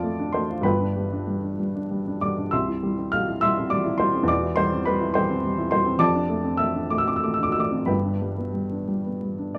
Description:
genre	classical, romantic character piece for solo piano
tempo	58-71 BPM (dotted quarters)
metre	6/8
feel	rubato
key	C major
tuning	A4 = 440 Hz
part	warm upright piano	solo	0.0-9.6 s	E1 to F6	-24 LUFS	equal	none
room	light reverb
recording	dark, warm production, vinyl crackle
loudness	-24 LUFS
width	mono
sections	0.0-9.6 A section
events	none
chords	0.0 Dm/F; 0.6 G; 2.5 C; 4.3 C/E; 6.0 Dm7/F; 7.9 G

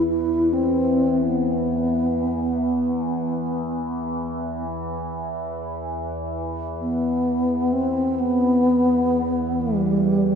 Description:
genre	world meditative, free-time meditation music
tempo	free time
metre	none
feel	none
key	E hirajoshi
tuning	A4 = 440 Hz
part	mellow bass flute	melody	0.0-10.4 s	G3 to E4	-20 LUFS	equal	analog delay
part	overtone-sweeping drone	drone	0.0-10.4 s	E2 to E3	-27 LUFS	equal	chorus, built-in reverb, phaser
room	wet lush hall reverb, RT60 2.5 s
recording	dreamy mix soaked in reverb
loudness	-20 LUFS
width	side -6 dB against mid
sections	0.0-10.4 A section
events	none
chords	none

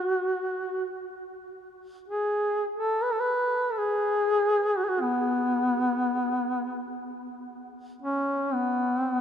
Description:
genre	caucasian folk, Caucasian lament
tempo	free time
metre	none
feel	none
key	unclear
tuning	A4 = 440 Hz
part	mellow duduk	solo	0.0-9.2 s	B3 to B4	-25 LUFS	equal	none
room	wet cathedral reverb, RT60 5.5 s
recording	minimal, uncompressed stereo recording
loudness	-24 LUFS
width	side -8 dB against mid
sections	0.0-9.2 A section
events	none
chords	none

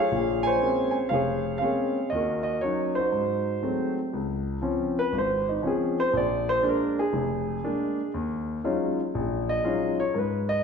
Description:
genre	solo jazz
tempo	120 BPM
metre	4/4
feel	swing 66% on 8ths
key	unclear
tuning	A4 = 436 Hz
part	warm concert grand piano	solo	0.0-10.6 s	F1 to Ab5	-24 LUFS	equal	none
room	wet scoring stage reverb, RT60 1.6 s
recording	recorded in a church or concert hall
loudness	-24 LUFS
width	side -6 dB against mid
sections	0.0-4.1 A section; 4.1-10.6 B section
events	grand piano solo 4.1-10.6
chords	0.1 Bbm9; 2.1 Ebm7; 3.1 Ab7b9; 4.1 Dbmaj7; 6.1 Bb7; 8.1 Ebm11

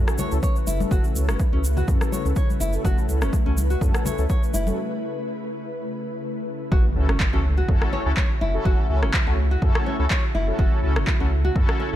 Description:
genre	afro house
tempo	124 BPM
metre	4/4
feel	swing 54% on 16ths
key	F# minor pentatonic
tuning	A4 = 439 Hz
part	ethereal airy pad	sustained chords	0.0-12.0 s	C#3 to B4	-31 LUFS	left 2 dB	ensemble chorus, built-in reverb, sidechain pumping
part	mellow synth brass	stabs	0.0-12.0 s	C#4 to A4	-31 LUFS	left 1 dB	chorus, phaser, sidechain pumping, dub echo
part	warm sub bass	bass	0.0-12.0 s	F#1 to F#2	-22 LUFS	equal	sidechain pumping
part	electronic rim click and handclaps	drums	0.1-4.0, 7.1-11.8 s	none	-29 LUFS	equal	none
part	congas	percussion	0.1-4.8 s	none	-32 LUFS	left 4 dB	none
part	egg shaker	percussion	0.1-4.8 s	none	-36 LUFS	right 3 dB	none
part	nylon-string guitar	arpeggios	0.2-11.9 s	C#4 to C#5	-31 LUFS	left 1 dB	sidechain pumping, dub echo
part	electronic kick drum	drums	0.4-11.7 s	none	-22 LUFS	equal	none
part	impact	sound effects	6.7-8.7 s	none	-31 LUFS	equal	none
room	digital ambience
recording	none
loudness	-20 LUFS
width	side -12 dB against mid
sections	0.0-6.7 A section; 6.7-12.0 B section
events	break 4.8-6.7; drop 6.7-12.0; impact 6.7-8.7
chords	0.0 F#m7

